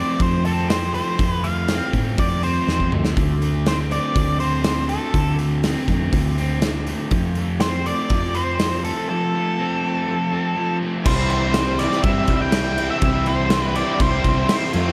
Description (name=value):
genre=classic rock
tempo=122 BPM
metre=4/4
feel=straight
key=unclear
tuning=A4 = 440 Hz
part: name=octave-fuzz lead guitar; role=melody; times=0.0-14.7 s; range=A4 to G5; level=-27 LUFS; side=equal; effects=distortion, slapback echo
part: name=crunchy overdriven guitar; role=riff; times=0.0-14.9 s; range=C3 to F4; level=-26 LUFS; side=equal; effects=slapback echo
part: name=hollow-body short-scale fingered electric bass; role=bass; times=0.2-14.9 s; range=C2 to A2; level=-26 LUFS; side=equal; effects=none
part: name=big rock drum kit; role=drums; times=0.2-14.8 s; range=crash cymbal, hi-hat, kick drum, snare drum, toms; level=-25 LUFS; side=equal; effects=none
part: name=raw garage guitar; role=riff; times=11.0-14.9 s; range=C3 to F4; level=-30 LUFS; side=equal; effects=overdrive, spring reverb, slapback echo
part: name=picked steel-string acoustic guitar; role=accompaniment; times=11.1-14.9 s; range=C3 to A4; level=-33 LUFS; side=equal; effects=none
part: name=bright tonewheel organ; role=sustained chords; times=11.1-14.9 s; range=none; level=barely audible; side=none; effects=none
room=moderate lush hall reverb, RT60 1.9 s, studio reverb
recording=big arena sound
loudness=-20 LUFS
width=mono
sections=0.0-11.1 A section; 11.1-14.9 B section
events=drum fill 2.7-3.2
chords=0.0 F; 3.2 D7(no3); 7.1 F; 11.1 C